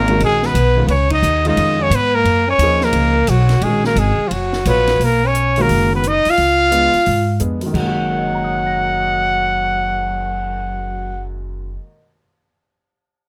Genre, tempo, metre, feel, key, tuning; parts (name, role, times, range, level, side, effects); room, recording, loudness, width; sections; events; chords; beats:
jazz, small-group swing and bop; 175 BPM; 4/4; swing 64% on 8ths; F# major; A4 = 438 Hz
warm trumpet; melody; 0.0-11.2 s; E#4 to F#5; -19 LUFS; equal; plate reverb
breathy tenor saxophone; second line; 0.0-11.2 s; E#3 to E#4; -24 LUFS; equal
upright bass; bass; 0.0-11.8 s; F#1 to G#2; -22 LUFS; equal
warm upright piano; accompaniment; 0.1-12.2 s; F#2 to A#6; -25 LUFS; equal
compact cocktail drum kit; drums; 0.1-10.4 s; crash cymbal, cymbal swell, hi-hat, kick drum, ride cymbal, snare drum; -32 LUFS; equal
moderate booth ambience, RT60 0.2 s; -16 LUFS; mono
0.0-5.0 A section; 5.0-7.7 B section; 7.7-10.5 C section
band accent 1.1
0.0 Emaj9 (rootless); 0.9 C#add9; 2.3 F#6; 5.0 Badd9; 6.4 C#7b9; 7.7 F#6
0.20 0.55 | 0.89 1.23 1.57 1.92 | 2.26 2.60 2.94 3.28 | 3.63 3.97 4.31 4.65 | 4.99 5.34 5.68 6.02 | 6.36 6.71 7.05 7.39 | 7.73 8.08 8.42 8.76 | 9.11 9.45 9.79 10.14